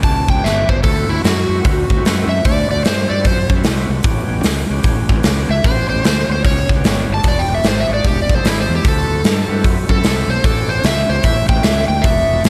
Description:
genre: blues rock power trio and southern rock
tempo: 150 BPM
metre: 4/4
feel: swing 62% on 8ths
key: unclear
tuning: A4 = 439 Hz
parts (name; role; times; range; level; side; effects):
- overdriven slide guitar; melody; 0.0-12.4 s; E4 to A5; -21 LUFS; equal; slapback echo, tape echo
- overdriven tonewheel organ; sustained chords; 0.0-12.4 s; G#3 to A4; -30 LUFS; equal; slow rotary speaker
- fuzz fingered electric bass; bass; 0.0-12.5 s; E1 to G2; -21 LUFS; equal; overdrive
- big rock drum kit; drums; 0.0-12.5 s; hi-hat, kick drum, snare drum; -18 LUFS; equal; none
room: moderate lush hall reverb, RT60 1.9 s, small room ambience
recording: big arena sound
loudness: -15 LUFS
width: mono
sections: 0.0-12.5 A section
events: electric slide guitar solo 0.0-12.5; drum fill 0.4-0.8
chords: 0.0 A7; 0.8 D7; 4.0 A7; 7.2 E7; 8.8 D7; 10.4 A7

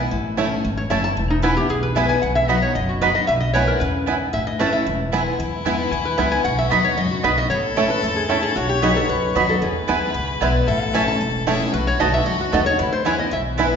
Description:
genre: bluegrass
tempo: 227 BPM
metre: 4/4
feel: straight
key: E major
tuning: A4 = 440 Hz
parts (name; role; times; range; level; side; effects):
- picked steel-string acoustic guitar; accompaniment; 0.0-13.8 s; E2 to F#4; -24 LUFS; left 3 dB; none
- upright bass; bass; 0.0-13.7 s; E1 to E2; -26 LUFS; equal; none
- bluegrass banjo; arpeggios; 0.4-13.7 s; A3 to F#4; -25 LUFS; right 4 dB; none
- mandolin; stabs; 0.4-13.7 s; A3 to B5; -24 LUFS; right 3 dB; none
- lap resonator guitar; melody; 0.8-13.4 s; D#4 to A5; -23 LUFS; left 1 dB; none
- clear fiddle; second line; 5.4-13.7 s; E4 to C#5; -26 LUFS; left 4 dB; none
room: wet recital hall reverb, RT60 1.7 s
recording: recorded in a church or concert hall, nothing above 7.5 kHz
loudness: -17 LUFS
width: side -6 dB against mid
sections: 0.0-5.4 A section; 5.4-13.8 B section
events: none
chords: 0.1 A; 1.2 E; 2.2 B; 3.3 E/B; 4.3 A; 4.9 E; 6.4 B; 7.5 A; 8.6 B; 9.6 E; 10.7 A; 11.7 B7; 12.8 E

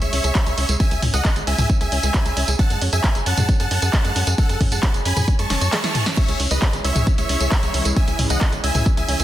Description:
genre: uplifting trance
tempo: 134 BPM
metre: 4/4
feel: straight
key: C# minor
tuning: A4 = 438 Hz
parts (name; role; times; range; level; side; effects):
- big supersaw lead; melody; 0.0-9.2 s; A4 to C#6; -25 LUFS; equal; sidechain pumping, dub echo
- analog pluck; arpeggios; 0.0-9.2 s; G#3 to C#5; -30 LUFS; right 2 dB; chorus, sidechain pumping, digital delay
- tight sequencer bass; bass; 0.0-9.2 s; F#1 to F#2; -22 LUFS; equal; sidechain pumping
- punchy analog drum machine; drums; 0.0-9.2 s; crash cymbal, handclaps, hi-hat, snare drum, tambourine, toms; -23 LUFS; equal; none
- electronic kick drum; drums; 0.4-8.9 s; none; -19 LUFS; equal; none
- reverse cymbal; sound effects; 5.5-6.2 s; none; -31 LUFS; right 5 dB; none
- lush unison pad; sustained chords; 6.2-9.2 s; E3 to C#4; -30 LUFS; left 2 dB; chorus, sidechain pumping
room: little or no reverb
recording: dense, heavily limited modern master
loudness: -17 LUFS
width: side -13 dB against mid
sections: 0.0-9.2 A section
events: reverse cymbal 5.5-6.2; drum fill 5.5-6.2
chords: 0.0 C#m; 2.6 F#m; 6.2 C#m

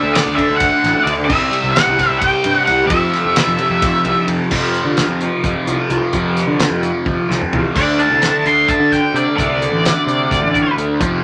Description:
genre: psychedelic rock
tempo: 259 BPM (eighths)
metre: 7/8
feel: straight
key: unclear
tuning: A4 = 440 Hz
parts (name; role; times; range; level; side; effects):
- octave-fuzz lead guitar; melody; 0.0-4.2, 7.8-10.7 s; D5 to C6; -18 LUFS; equal; distortion
- fuzz guitar; riff; 0.0-11.2 s; F2 to D4; -20 LUFS; equal; distortion, phaser
- fuzz picked electric bass; bass; 0.0-11.2 s; A1 to D3; -24 LUFS; equal; overdrive
- damped 70s drum kit; drums; 0.2-11.1 s; crash cymbal, hi-hat, kick drum, ride cymbal, snare drum, toms; -23 LUFS; equal; none
room: wet small room reverb, RT60 0.5 s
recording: none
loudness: -15 LUFS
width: mono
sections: 0.0-4.5 A section; 4.5-7.8 B section; 7.8-11.2 C section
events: drum fill 7.1-7.8; lead electric guitar solo 7.8-11.2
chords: 0.0 D; 1.3 C; 2.9 F5; 7.8 D5

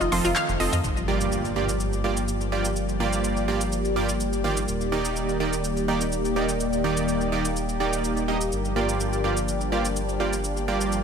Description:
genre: progressive house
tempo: 125 BPM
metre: 4/4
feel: straight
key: G minor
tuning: A4 = 439 Hz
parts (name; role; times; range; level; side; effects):
- lush unison pad; sustained chords; 0.0-11.0 s; Eb3 to D5; -27 LUFS; left 1 dB; chorus, phaser
- analog pluck; arpeggios; 0.0-0.8 s; F4 to C6; -27 LUFS; equal; chorus, ping-pong delay
- dark detuned saw bass; bass; 0.0-11.0 s; Eb1 to F2; -30 LUFS; left 1 dB; none
- big-room dance drum kit; drums; 0.0-11.0 s; handclaps, hi-hat, shaker; -33 LUFS; equal; none
- supersaw stab; stabs; 0.1-11.0 s; G2 to Eb5; -27 LUFS; right 4 dB; ping-pong delay
- impact; sound effects; 0.8-2.8 s; none; -33 LUFS; left 1 dB; none
room: light reverb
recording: none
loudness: -22 LUFS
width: side -6 dB against mid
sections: 0.8-11.0 A section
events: impact 0.8-2.8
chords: 0.0 F7; 0.8 Gm7; 4.7 Ebmaj7; 8.5 Gm7

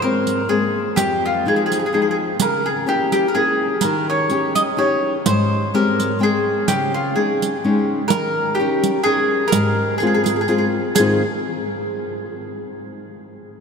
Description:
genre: italian folk, Italian serenade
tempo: 127 BPM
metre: 3/4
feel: swing 54% on 8ths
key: Ab major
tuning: A4 = 440 Hz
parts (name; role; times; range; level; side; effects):
- mandolin; melody; 0.0-11.2 s; F4 to Eb5; -19 LUFS; equal; none
- nylon-string guitar; accompaniment; 0.0-11.2 s; F2 to G5; -21 LUFS; left 2 dB; none
- riq; percussion; 0.3-11.2 s; none; -26 LUFS; right 7 dB; none
room: wet cathedral reverb, RT60 6.9 s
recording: in a vast, echoing space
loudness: -16 LUFS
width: side -6 dB against mid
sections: 0.0-11.0 A section; 11.0-12.4 B section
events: none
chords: 0.0 Abadd9; 1.0 Fm7; 2.4 Dbm6; 3.8 Eb7; 5.2 Abmaj7; 6.7 Dbsus2; 8.1 Eb7; 9.5 Ab6

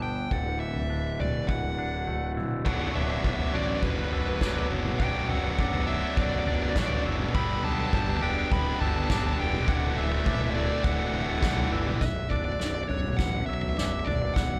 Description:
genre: post-rock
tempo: 102 BPM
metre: 4/4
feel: straight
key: B minor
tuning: A4 = 440 Hz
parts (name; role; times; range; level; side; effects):
- overdriven electric guitar; melody; 0.0-14.6 s; B4 to B5; -35 LUFS; equal; spring reverb, slapback echo
- deep dark ambient pad; sustained chords; 0.0-14.6 s; F#3 to D5; -44 LUFS; equal; none
- glockenspiel with rubber mallets; arpeggios; 0.0-14.6 s; D6 to A6; -42 LUFS; equal; slapback echo
- twangy electric guitar; arpeggios; 0.0-14.6 s; B1 to G4; -41 LUFS; equal; none
- fuzz picked electric bass; bass; 0.0-14.6 s; B0 to B1; -35 LUFS; equal; overdrive
- soft-mallet drum kit; drums; 0.3-14.5 s; crash cymbal, kick drum, snare drum, toms; -32 LUFS; equal; none
- tight distorted guitar; riff; 2.6-12.0 s; B1 to G4; -33 LUFS; equal; distortion
room: light reverb, small room ambience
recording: none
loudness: -28 LUFS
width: mono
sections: 0.0-2.7 A section; 2.7-12.0 B section; 12.0-14.6 C section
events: build-up 12.0-14.6; drum fill 12.0-14.6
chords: 0.3 Dadd9; 2.7 Bm; 7.3 G; 9.7 Dadd9; 12.0 Bm

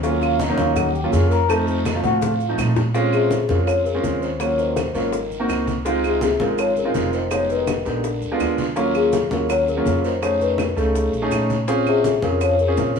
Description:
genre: Afro-Cuban jazz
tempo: 165 BPM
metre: 4/4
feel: straight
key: Bb minor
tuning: A4 = 440 Hz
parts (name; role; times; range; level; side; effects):
- trombone with cup mute; second line; 0.0-13.0 s; C3 to Bb4; -26 LUFS; left 3 dB; none
- warm concert grand piano; accompaniment; 0.0-13.0 s; F3 to A4; -22 LUFS; right 2 dB; none
- upright bass; bass; 0.0-13.0 s; F1 to Bb2; -25 LUFS; equal; none
- congas; percussion; 0.0-13.0 s; none; -30 LUFS; equal; none
- cowbell and bongos; percussion; 0.0-13.0 s; none; -30 LUFS; left 5 dB; none
- guiro; percussion; 0.0-13.0 s; none; -38 LUFS; right 3 dB; none
- maracas; percussion; 0.0-13.0 s; none; -43 LUFS; right 6 dB; none
- claves; percussion; 0.2-12.6 s; none; -33 LUFS; right 8 dB; none
- large celesta; melody; 3.1-13.0 s; Ab4 to Db5; -22 LUFS; left 4 dB; none
room: moderate large studio reverb, RT60 0.9 s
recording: band playing live in one room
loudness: -18 LUFS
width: side -6 dB against mid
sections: 0.0-2.9 A section; 2.9-13.0 B section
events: trombone solo 0.0-2.9; drum fill 1.9-2.9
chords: 0.0 Ebm7; 1.5 F7; 2.9 Bbm9; 4.4 Ebm7; 5.1 Ab9; 5.9 Dbmaj9; 7.3 Fm7b5; 8.0 Bb7b9; 8.8 Ebm7; 10.2 F7alt; 11.7 Bbm9

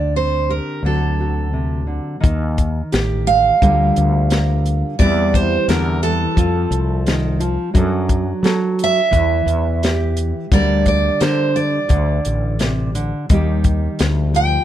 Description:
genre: acoustic folk-pop ballad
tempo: 87 BPM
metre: 4/4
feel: straight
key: unclear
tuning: A4 = 440 Hz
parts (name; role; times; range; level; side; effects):
- picked steel-string acoustic guitar; melody; 0.0-14.6 s; A4 to G5; -19 LUFS; right 5 dB; none
- nylon-string guitar; accompaniment; 0.0-14.6 s; C3 to Bb4; -22 LUFS; left 1 dB; none
- fretless electric bass; bass; 0.0-14.6 s; A1 to F#3; -18 LUFS; equal; none
- compact cocktail drum kit; drums; 2.2-14.5 s; hi-hat, kick drum, snare drum; -18 LUFS; left 1 dB; none
room: little or no reverb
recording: dark, warm production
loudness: -15 LUFS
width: side -11 dB against mid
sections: 0.0-2.2 A section; 2.2-14.6 B section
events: none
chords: 0.0 D7sus4; 0.8 D7; 2.2 Eb; 3.6 Gm7/D; 5.0 C/E; 6.4 F; 7.8 D/F#; 9.1 Em; 10.5 Gm/D; 11.9 D5; 13.3 Eb

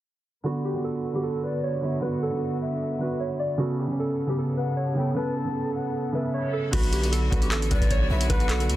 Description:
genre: hip hop, trap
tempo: 153 BPM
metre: 4/4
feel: half-time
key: B minor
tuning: A4 = 436 Hz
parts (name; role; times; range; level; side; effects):
- felt-muted upright piano; accompaniment; 0.4-8.8 s; C#3 to B4; -28 LUFS; right 2 dB; none
- warbly lo-fi synth keys; melody; 0.5-8.8 s; F#4 to D5; -31 LUFS; right 1 dB; chorus, digital delay
- bright symphonic string section; sustained chords; 0.5-8.8 s; C#3 to A4; -35 LUFS; equal; none
- breathy mellow jazz flute; second line; 1.4-8.8 s; D5 to A5; -36 LUFS; left 5 dB; digital delay
- distorted 808-style bass; bass; 6.7-8.8 s; A1 to D2; -26 LUFS; equal; distortion
- booming analog drum machine; drums; 6.7-8.8 s; crash cymbal, handclaps, hi-hat, kick drum; -24 LUFS; equal; none
room: small room reverb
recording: dense, heavily limited modern master, low-pass filter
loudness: -24 LUFS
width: side -14 dB against mid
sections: 0.5-6.7 A section; 6.7-8.8 B section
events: filter sweep 0.5-6.7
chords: 0.5 Bm; 3.6 Aadd9; 6.7 Bm

